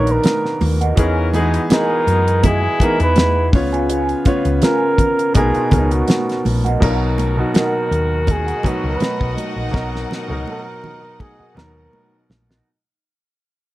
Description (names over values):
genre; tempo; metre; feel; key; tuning
lush 1970s-style soul; 82 BPM; 4/4; swing 54% on 16ths; B major; A4 = 440 Hz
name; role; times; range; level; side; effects
breathy flugelhorn; melody; 0.0-12.3 s; F#4 to C#5; -20 LUFS; right 2 dB; none
clear grand piano; accompaniment; 0.0-12.7 s; B2 to C#5; -21 LUFS; equal; none
hollow-body short-scale fingered electric bass; bass; 0.0-12.6 s; A#1 to F#2; -19 LUFS; equal; none
electric guitar through a small old amp; riff; 0.1-12.7 s; A#3 to G#4; -25 LUFS; right 2 dB; wah
damped 70s drum kit; drums; 0.1-12.7 s; crash cymbal, hi-hat, kick drum, snare drum; -17 LUFS; equal; none
congas; percussion; 0.2-12.5 s; none; -27 LUFS; right 4 dB; none
clear horn section; stabs; 1.0-12.3 s; B2 to A#4; -26 LUFS; left 6 dB; none
warm studio string section; second line; 8.3-12.6 s; D#4 to F#5; -33 LUFS; equal; none
room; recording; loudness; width
little or no reverb; dry, close 1970s-style studio recording; -14 LUFS; side -16 dB against mid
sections
0.0-6.8 A section; 6.8-12.7 B section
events
fade-out 6.8-12.7; drum fill 9.7-12.7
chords
0.0 Bmaj7; 1.0 Emaj7; 3.5 C#7; 5.4 Bmaj7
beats
0.25 | 0.98 1.71 2.44 3.17 | 3.90 4.63 5.36 6.09 | 6.82 7.55 8.28 9.01 | 9.74 10.47 11.20 11.93